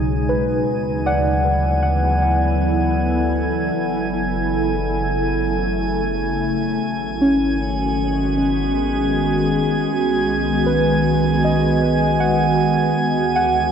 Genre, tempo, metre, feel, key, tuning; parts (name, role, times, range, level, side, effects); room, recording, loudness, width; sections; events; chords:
ambient; 78 BPM; 4/4; straight; B mixolydian; A4 = 440 Hz
glassy FM pad; sustained chords; 0.0-13.7 s; B2 to A4; -20 LUFS; equal; ensemble chorus, built-in reverb, shimmer reverb
muted felt-like synth keys; arpeggios; 0.0-13.7 s; C#3 to F#5; -22 LUFS; equal; chorus, tape echo, shimmer reverb
warm sub bass; bass; 0.0-13.7 s; F#1 to D2; -25 LUFS; equal
drifting glass-harmonics texture; texture; 0.0-13.7 s; G#5; -26 LUFS; right 3 dB; chorus, built-in reverb, shimmer reverb
wet huge ambient reverb, RT60 8.6 s; dark, warm production; -16 LUFS; side -7 dB against mid
0.0-13.7 A section
fade-out on sub bass 0.0-13.7
0.0 B6; 0.7 D69; 3.7 F#m7; 6.8 G#m7; 9.9 B6; 13.0 D6